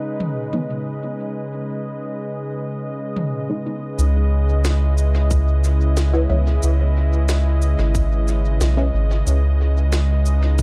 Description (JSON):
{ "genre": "ambient dub", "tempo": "91 BPM", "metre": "4/4", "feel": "straight", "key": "C# minor", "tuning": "A4 = 440 Hz", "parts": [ { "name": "warm analog pad", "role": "sustained chords", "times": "0.0-10.6 s", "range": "C#3 to D#5", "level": "-28 LUFS", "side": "equal", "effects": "lush chorus" }, { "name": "bubbling stepped-filter texture", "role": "texture", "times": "0.0-4.0 s", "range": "D#5", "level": "-46 LUFS", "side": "equal", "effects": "none" }, { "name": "organic electronic drum kit", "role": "drums", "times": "0.2-10.6 s", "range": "cabasa, snare drum, toms", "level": "-32 LUFS", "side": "equal", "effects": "studio reverb, dub echo" }, { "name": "filtered dub chord stab", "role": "stabs", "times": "0.5-8.9 s", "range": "C#3 to E4", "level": "-31 LUFS", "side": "equal", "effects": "phaser, ensemble chorus, dub echo" }, { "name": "soft dub sub bass", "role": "bass", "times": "4.0-10.6 s", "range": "G#1 to C#2", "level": "-19 LUFS", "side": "equal", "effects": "none" }, { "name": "electronic kick drum", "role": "drums", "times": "5.3-10.6 s", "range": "none", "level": "-23 LUFS", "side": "equal", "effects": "studio reverb" } ], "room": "little or no reverb", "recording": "echo-heavy mix", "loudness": "-20 LUFS", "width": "mono", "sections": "0.0-4.0 A section; 4.0-10.6 B section", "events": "filter sweep on synth stab 0.0-4.0", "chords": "0.0 G#m/C#; 4.0 C#m7" }